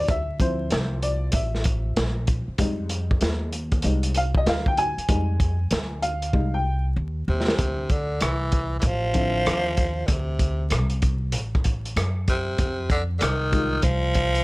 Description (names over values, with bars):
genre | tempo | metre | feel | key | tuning
hip hop, jazz-hop | 96 BPM | 4/4 | swing 64% on 16ths | D minor | A4 = 440 Hz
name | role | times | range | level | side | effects
dark upright piano | accompaniment | 0.0-13.8 s | D3 to Ab5 | -27 LUFS | left 1 dB | none
upright bass | bass | 0.0-14.4 s | A1 to F#2 | -26 LUFS | equal | none
crunchy breakbeat drum kit | drums | 0.1-14.4 s | hi-hat, kick drum, rim click, snare drum | -24 LUFS | equal | vintage 12-bit sampler grit
growling tenor saxophone | melody | 7.3-14.4 s | C3 to F3 | -25 LUFS | equal | none
room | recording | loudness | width
little or no reverb | vinyl crackle | -21 LUFS | side -22 dB against mid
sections
0.0-7.6 A section; 7.6-14.4 B section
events
upright piano solo 0.0-7.6; drum fill 6.3-7.6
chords
0.0 Dm9; 2.6 Fm9; 7.6 Dm9; 12.6 Fm9